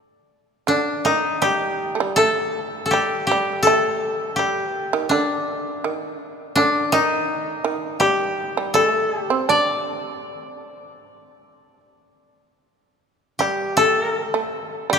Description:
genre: japanese traditional, Japanese chamber music.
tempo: 73-84 BPM.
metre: 4/4.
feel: rubato.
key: unclear.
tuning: A4 = 440 Hz.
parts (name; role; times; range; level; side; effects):
koto; melody; 0.7-15.0 s; D4 to D5; -20 LUFS; left 2 dB; none.
shamisen; second line; 0.7-15.0 s; D3 to D4; -24 LUFS; right 6 dB; none.
room: moderate church reverb, RT60 3.9 s.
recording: minimal, uncompressed stereo recording.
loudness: -18 LUFS.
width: side -6 dB against mid.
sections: 0.7-12.6 A section; 12.6-15.0 B section.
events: none.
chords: none.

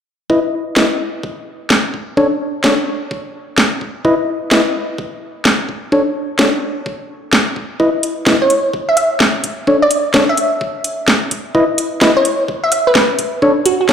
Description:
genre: UK garage, two-step garage.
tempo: 128 BPM.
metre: 4/4.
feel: swing 65% on 16ths.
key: unclear.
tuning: A4 = 439 Hz.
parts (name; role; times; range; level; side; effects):
percussive organ stab; stabs; 0.3-13.9 s; D4 to D#5; -16 LUFS; left 1 dB; chorus, vintage 12-bit sampler grit, dub echo.
electronic kick drum; drums; 0.3-13.9 s; none; -27 LUFS; equal; high-pass filter on kick.
garage drum kit; drums; 0.8-13.9 s; hi-hat, snare drum; -15 LUFS; equal; none.
glassy wavetable pluck; melody; 8.4-13.9 s; F#4 to E5; -15 LUFS; right 1 dB; chorus, dub echo.
room: wet plate reverb, RT60 2.5 s.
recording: played on a big sound system in a bare room, large studio reverb.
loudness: -13 LUFS.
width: side -8 dB against mid.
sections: 0.3-13.9 A section.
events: none.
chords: 0.3 E5; 1.9 D5; 4.0 E5; 5.7 D5; 7.8 E5; 9.4 D5; 11.5 E5; 13.2 Dmaj7.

